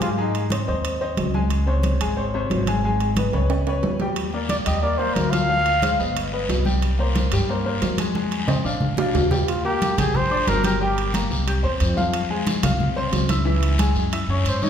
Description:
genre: Afro-Cuban jazz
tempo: 181 BPM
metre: 4/4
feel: straight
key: Eb major from 9.5 s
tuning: A4 = 440 Hz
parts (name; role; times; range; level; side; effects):
- breathy trumpet; melody; 0.0-0.5, 4.5-6.3, 9.5-11.1, 14.5-14.7 s; Eb4 to F5; -23 LUFS; equal; none
- bright upright piano; accompaniment; 0.0-14.7 s; C3 to G6; -25 LUFS; left 2 dB; none
- upright bass; bass; 0.0-14.7 s; G1 to Ab2; -24 LUFS; equal; none
- congas; percussion; 0.0-14.7 s; none; -26 LUFS; equal; none
- timbales; percussion; 0.0-14.6 s; none; -29 LUFS; right 3 dB; none
- guiro; percussion; 4.2-14.7 s; none; -33 LUFS; left 2 dB; none
room: wet recital hall reverb, RT60 1.5 s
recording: recorded in a church or concert hall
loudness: -19 LUFS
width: side -8 dB against mid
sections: 0.0-9.5 A section; 9.5-14.7 B section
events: drum fill 3.3-4.2, 8.2-9.5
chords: 0.2 Ab; 1.5 Db5; 2.8 Abm; 3.5 Dbsus2; 4.2 Ebmaj7; 5.5 Dm7b5; 6.2 Gaug; 6.8 C5; 8.2 Fm7; 8.8 Bb; 9.5 Ebmaj7; 10.8 Gmadd11; 11.5 C; 12.1 Fm; 13.5 Dbm; 14.1 Gbsus2

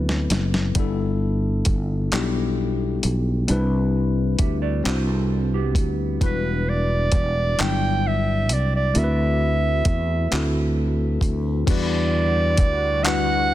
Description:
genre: slow six-eight R&B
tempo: 44 BPM (dotted quarters)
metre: 6/8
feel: straight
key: E minor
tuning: A4 = 440 Hz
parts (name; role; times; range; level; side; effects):
- tine electric piano; accompaniment; 0.0-13.5 s; F#3 to D5; -26 LUFS; moving between left 9 dB and equal; auto-pan
- sustaining fretless electric bass; bass; 0.0-13.5 s; E1 to E2; -22 LUFS; equal; none
- dusty soul sampler-style drum kit; drums; 0.1-13.3 s; crash cymbal, handclaps, hi-hat, kick drum, snare drum; -24 LUFS; equal; none
- mellow electric guitar; second line; 4.4-6.2 s; B3 to E5; -30 LUFS; right 9 dB; none
- warm clarinet; melody; 6.2-13.5 s; B4 to G5; -24 LUFS; right 3 dB; tape echo
- lush unison pad; sustained chords; 11.7-13.5 s; D3 to F#4; -32 LUFS; right 2 dB; chorus
room: digital ambience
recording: dense, heavily limited modern master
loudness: -19 LUFS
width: side -14 dB against mid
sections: 0.0-11.7 A section; 11.7-13.5 B section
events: drum fill 0.0-0.8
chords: 0.0 D13; 0.8 G6; 3.5 Cmaj7; 6.2 Em9; 8.9 D13; 11.7 Em9

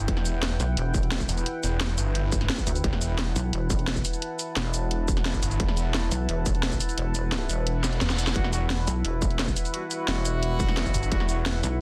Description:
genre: dark technical drum and bass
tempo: 174 BPM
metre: 4/4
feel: straight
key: E minor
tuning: A4 = 440 Hz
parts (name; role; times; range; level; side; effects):
- deep dark ambient pad; sustained chords; 0.0-11.8 s; E4 to A5; -36 LUFS; equal; chorus, built-in reverb, sidechain pumping
- snarling distorted saw bass; bass; 0.0-3.3, 5.4-8.9, 10.9-11.6 s; E1 to G1; -29 LUFS; equal; overdrive, sidechain pumping
- drum and bass drum kit; drums; 0.0-11.7 s; hi-hat, shaker, snare drum; -32 LUFS; equal; studio ambience
- electronic kick drum; drums; 0.1-11.2 s; none; -30 LUFS; equal; distortion, studio ambience
- pulsing pluck wobble bass; bass; 0.6-11.8 s; E1 to D2; -30 LUFS; equal; chorus
- reverse cymbal; sound effects; 7.8-8.4 s; none; -39 LUFS; equal; none
- warm brass ensemble; stabs; 8.4-11.4 s; G3 to F#4; -36 LUFS; equal; digital delay
room: light reverb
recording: dense, heavily limited modern master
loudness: -26 LUFS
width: mono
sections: 0.0-11.8 A section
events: kick drops out 7.7-8.4; reverse cymbal 7.8-8.4; drum fill 7.8-8.4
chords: 0.0 Emadd9

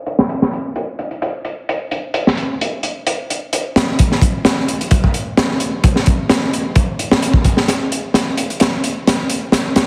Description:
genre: breakbeat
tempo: 130 BPM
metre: 4/4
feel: straight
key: none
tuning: none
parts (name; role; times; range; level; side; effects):
- crunchy breakbeat drum kit; drums; 0.1-9.9 s; hi-hat, kick drum, snare drum; -17 LUFS; equal; none
room: moderate lush hall reverb, RT60 1.8 s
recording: heavily compressed radio sound, multiband compression, vinyl crackle, low-pass filter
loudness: -17 LUFS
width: mono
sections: 0.0-4.0 A section; 4.0-9.9 B section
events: filter sweep 0.0-4.0; build-up 4.0-9.9; drum fill 7.7-9.9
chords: none

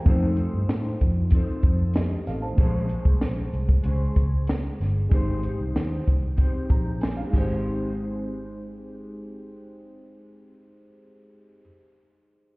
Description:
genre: indie pop, bedroom pop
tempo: 95 BPM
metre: 4/4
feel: straight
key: Ab major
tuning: A4 = 440 Hz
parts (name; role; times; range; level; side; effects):
- dark upright piano; accompaniment; 0.0-12.6 s; Ab3 to Bb5; -35 LUFS; right 2 dB; cassette tape
- mellow electric guitar; accompaniment; 0.0-11.7 s; Bb2 to C5; -32 LUFS; left 2 dB; ensemble chorus, warbly pitch drift
- vintage muted fingered electric bass; bass; 0.1-11.6 s; G1 to A2; -25 LUFS; equal; none
- compact cocktail drum kit; drums; 0.1-7.5 s; crash cymbal, hi-hat, kick drum, snare drum; -21 LUFS; equal; none
room: small room reverb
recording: heard muffled through a wall, stone room reverb, EQ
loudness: -22 LUFS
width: side -24 dB against mid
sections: 0.0-7.6 A section; 7.6-10.2 B section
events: upright piano fill 6.4-7.6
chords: 0.1 F7; 2.6 Bbm9; 5.1 Abmaj7

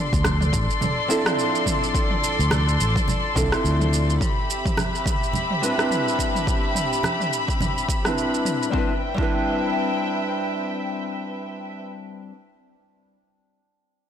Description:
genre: sunset chillout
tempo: 106 BPM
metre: 4/4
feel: swing 58% on 16ths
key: C major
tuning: A4 = 440 Hz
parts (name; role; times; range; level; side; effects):
- dark studio string section; sustained chords; 0.0-11.8 s; C4 to C6; -25 LUFS; left 2 dB; vintage 12-bit sampler grit
- fingered electric bass; bass; 0.1-4.2 s; A1 to D2; -21 LUFS; equal; tube saturation
- deep house drum kit; drums; 0.1-8.7 s; rim click, shaker, toms; -27 LUFS; right 2 dB; overdrive
- electronic kick drum; drums; 0.1-9.3 s; none; -26 LUFS; equal; overdrive
- congas; percussion; 0.2-7.7 s; none; -30 LUFS; right 3 dB; none
- nylon-string guitar; accompaniment; 1.1-12.4 s; F3 to B4; -26 LUFS; moving between left 5 dB and right 2 dB; auto-pan, low-pass filter, tape echo
room: moderate lush hall reverb, RT60 2.0 s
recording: blown-out, overdriven recording, overdrive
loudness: -20 LUFS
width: side -9 dB against mid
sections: 0.0-8.7 A section; 8.7-11.0 B section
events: filter sweep on nylon-string guitar 0.0-8.7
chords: 0.0 Dm7; 4.2 Cmaj7

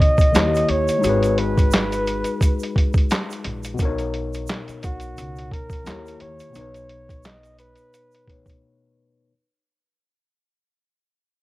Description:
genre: lo-fi hip hop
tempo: 87 BPM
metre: 4/4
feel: swing 56% on 16ths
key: B major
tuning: A4 = 435 Hz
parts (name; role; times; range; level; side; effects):
- breathy flugelhorn; melody; 0.0-8.6 s; F#4 to D#5; -24 LUFS; right 1 dB; cassette tape, analog delay
- tine electric piano; accompaniment; 0.0-9.3 s; B2 to C#5; -26 LUFS; left 4 dB; overdrive, cassette tape
- lo-fi sampler-style drum kit; drums; 0.0-8.6 s; handclaps, hi-hat, kick drum, snare drum; -20 LUFS; equal; vintage 12-bit sampler grit
- egg shaker; percussion; 0.2-8.6 s; none; -42 LUFS; right 7 dB; none
- upright bass; bass; 0.3-7.7 s; G#1 to D#2; -27 LUFS; equal; none
room: light reverb, small room ambience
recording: home recording on cassette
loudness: -18 LUFS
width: side -18 dB against mid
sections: 0.0-9.3 A section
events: fade-out 0.0-9.3; break 8.6-9.3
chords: 0.3 D#7b9; 1.0 G#m7; 3.8 Bmaj7; 5.9 D#7b9; 6.5 B

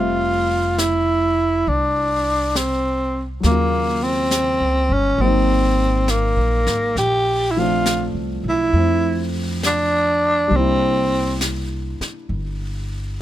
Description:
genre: jazz ballad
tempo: 68 BPM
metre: 4/4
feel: swing 68% on 8ths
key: F major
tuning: A4 = 440 Hz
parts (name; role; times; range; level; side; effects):
- growling tenor saxophone; melody; 0.0-11.4 s; Bb3 to G4; -18 LUFS; equal; none
- warm baby grand piano; accompaniment; 0.0-13.2 s; Db3 to E5; -25 LUFS; left 2 dB; none
- upright bass; bass; 0.0-13.2 s; F1 to F2; -23 LUFS; equal; none
- jazz brush drum kit; drums; 0.8-13.2 s; brushed snare drum, hi-hat, snare drum; -28 LUFS; left 2 dB; none
room: little or no reverb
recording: close, detailed microphones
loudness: -17 LUFS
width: side -13 dB against mid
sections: 0.0-13.2 A section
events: none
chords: 0.0 Fmaj9; 3.4 Ebm7; 5.2 Ab9; 7.0 Bbmaj9; 10.5 C7

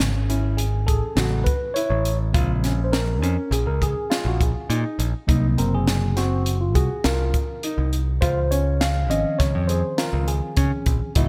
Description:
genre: progressive instrumental, band music in an uneven meter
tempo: 102 BPM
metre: 5/4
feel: straight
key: Db major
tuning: A4 = 439 Hz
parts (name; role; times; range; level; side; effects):
- tine electric piano; accompaniment; 0.0-11.3 s; C3 to F5; -28 LUFS; equal; phaser
- modern bright picked electric bass; bass; 0.0-11.3 s; Gb1 to Db3; -25 LUFS; equal; none
- crisp fusion drum kit; drums; 0.0-11.3 s; hi-hat, kick drum, snare drum; -26 LUFS; equal; none
- dark grand piano; arpeggios; 0.3-11.3 s; C4 to G#4; -32 LUFS; equal; none
- warm alto saxophone; second line; 11.2-11.3 s; Eb4; -34 LUFS; equal; none
room: light reverb, studio ambience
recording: bright 1980s-style digital production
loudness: -22 LUFS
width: mono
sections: 0.0-11.3 A section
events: tine electric piano solo 0.0-11.3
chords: 0.0 Amaj7; 2.3 Bbm7; 5.3 Gbmaj9#11; 8.2 Dbmaj7

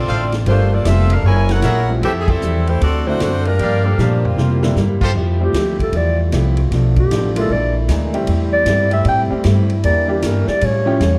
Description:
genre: jazz, big band swing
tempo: 154 BPM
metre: 4/4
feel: swing 64% on 8ths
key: F major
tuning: A4 = 440 Hz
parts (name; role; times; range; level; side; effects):
- edgy saxophone section; melody; 0.0-4.8 s; E3 to Ab5; -22 LUFS; equal; none
- upright bass; bass; 0.0-11.2 s; F1 to C3; -19 LUFS; equal; none
- fingerpicked steel-string acoustic guitar; accompaniment; 0.1-11.2 s; G2 to A4; -27 LUFS; equal; none
- bright trumpet section; stabs; 0.1-5.1 s; E4 to F5; -28 LUFS; equal; none
- swinging big-band drum kit; drums; 0.1-11.1 s; crash cymbal, hi-hat, kick drum, ride cymbal, snare drum, toms; -27 LUFS; equal; none
- bright upright piano; accompaniment; 0.5-11.0 s; D3 to G4; -26 LUFS; equal; none
- dark trombone section; sustained chords; 5.2-11.2 s; C3 to F4; -30 LUFS; equal; none
- breathy clarinet; melody; 5.4-11.2 s; G4 to G5; -21 LUFS; equal; none
room: light reverb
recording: dark, warm production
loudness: -16 LUFS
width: mono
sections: 0.0-5.2 A section; 5.2-11.2 B section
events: band accent 2.2; drum fill 4.0-4.8; clarinet solo 5.2-11.2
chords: 0.5 Gm9; 1.2 Gb9; 2.0 Fmaj9; 2.8 D7; 3.6 Gm7; 4.4 C7; 5.2 Fmaj9; 6.7 Bm7b5; 7.5 Bb7#11; 8.3 Am7; 9.8 Em7b5; 10.6 A7b13

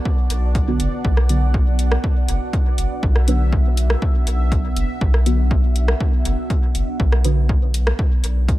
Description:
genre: dub techno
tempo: 121 BPM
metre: 4/4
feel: straight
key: B minor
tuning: A4 = 440 Hz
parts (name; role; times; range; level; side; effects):
- deep dark ambient pad; sustained chords; 0.0-8.6 s; B3 to F#5; -30 LUFS; right 2 dB; chorus, built-in reverb, sidechain pumping
- bubbling stepped-filter texture; texture; 0.0-7.0 s; D4 to E5; -34 LUFS; right 1 dB; chorus, built-in reverb, sidechain pumping
- electronic kick drum; drums; 0.1-8.6 s; none; -19 LUFS; equal; none
- round analog bass; bass; 0.3-8.6 s; F#1 to B1; -19 LUFS; equal; sidechain pumping
- deep house drum kit; drums; 0.3-8.6 s; hi-hat, rim click; -27 LUFS; equal; overdrive, dub echo
- deep mellow chord stab; stabs; 0.7-7.5 s; D3 to B3; -26 LUFS; right 1 dB; chorus, phaser, sidechain pumping, dub echo
room: digital ambience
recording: echo-heavy mix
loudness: -16 LUFS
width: side -16 dB against mid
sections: 0.0-7.0 A section; 7.0-8.6 A section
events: filter sweep on synth stab 0.0-7.0, 7.0-8.6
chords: 0.0 Bm

